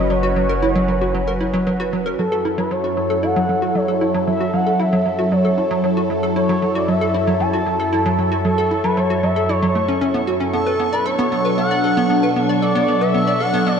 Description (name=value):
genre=ambient, sequencer-driven space music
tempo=115 BPM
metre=4/4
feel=straight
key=F# minor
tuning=A4 = 436 Hz
part: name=expressive synth lead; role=melody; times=0.0-13.8 s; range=A4 to A5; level=-21 LUFS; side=equal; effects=chorus, tape echo
part: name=phased analog pad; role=sustained chords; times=0.0-13.8 s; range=F#2 to B4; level=-20 LUFS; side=equal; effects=phaser, chorus
part: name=hollow square pluck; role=riff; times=0.0-13.8 s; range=F#3 to D5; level=-22 LUFS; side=right 1 dB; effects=lush chorus, tape echo
part: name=round analog bass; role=bass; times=0.0-2.2 s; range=F#1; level=-25 LUFS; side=equal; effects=none
part: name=bubbling stepped-filter texture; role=texture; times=2.2-13.8 s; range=C#6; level=-35 LUFS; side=right 1 dB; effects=chorus, built-in reverb
room=wet lush hall reverb, RT60 3.0 s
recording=dark, warm production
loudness=-16 LUFS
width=side -7 dB against mid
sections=0.0-2.2 A section; 2.2-13.8 B section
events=fade-in on synth texture 2.2-13.8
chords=0.0 F#7sus4; 2.2 F#m7; 10.5 Bm7